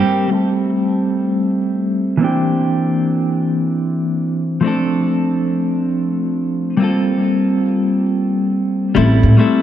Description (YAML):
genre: sunset chillout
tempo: free time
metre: none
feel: none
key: unclear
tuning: A4 = 440 Hz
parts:
  - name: clean electric guitar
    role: accompaniment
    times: 0.0-9.6 s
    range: E3 to A4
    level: -15 LUFS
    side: equal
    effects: auto-pan, low-pass filter, tape echo
  - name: upright bass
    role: bass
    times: 9.0-9.3 s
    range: A1 to A2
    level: -12 LUFS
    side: equal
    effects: tube saturation
room: wet recital hall reverb, RT60 1.5 s, studio ambience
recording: dark, warm production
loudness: -15 LUFS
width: side -10 dB against mid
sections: 0.3-9.0 A section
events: filter sweep on clean electric guitar 0.3-9.0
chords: 0.3 Am7; 2.2 C9; 4.6 Dm7; 6.8 Gm11; 9.0 Am7